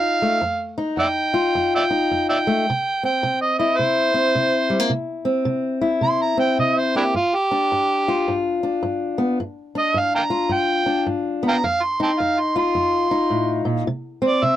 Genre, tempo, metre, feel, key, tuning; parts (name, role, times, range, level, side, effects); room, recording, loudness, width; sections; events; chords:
acoustic country blues, solo or duo; 107 BPM; 4/4; swing 62% on 8ths; A4 = 440 Hz
overdriven harmonica; melody; 0.0-14.6 s; D4 to C6; -20 LUFS; right 2 dB
fingerpicked steel-string acoustic guitar; accompaniment; 0.0-14.6 s; F2 to F4; -21 LUFS; left 2 dB
moderate booth ambience, RT60 0.2 s; close, detailed microphones; -18 LUFS; side -12 dB against mid
0.0-14.6 A section
harmonica solo 0.0-14.6
0.0 F7; 2.7 C; 7.2 G7(no3); 11.6 F7; 13.9 N.C.